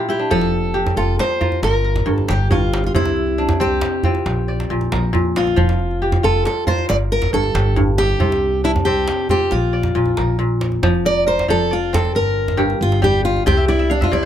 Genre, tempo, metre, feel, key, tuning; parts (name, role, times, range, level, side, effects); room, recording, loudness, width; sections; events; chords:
west african traditional, West African string and xylophone music; 91 BPM (dotted quarters); 12/8; straight; F major; A4 = 441 Hz
fingerpicked steel-string acoustic guitar; melody; 0.0-14.3 s; D4 to D5; -19 LUFS; equal
kora; arpeggios; 0.0-14.3 s; G2 to G5; -21 LUFS; equal
upright bass; bass; 0.3-14.3 s; F1 to C2; -21 LUFS; equal
djembe; percussion; 0.3-14.1 s; -22 LUFS; right 2 dB
little or no reverb; close, detailed microphones; -15 LUFS; side -10 dB against mid
0.3-10.8 A section; 10.8-14.3 B section
kora fill 0.0-0.3, 13.5-14.3; steel-string acoustic guitar solo 10.8-14.3
0.3 F; 1.6 Gm; 2.9 C; 4.3 Bb; 5.6 Fadd9; 6.9 Gm; 8.2 C5; 9.5 Bb; 10.8 F5; 12.1 Gm; 13.5 C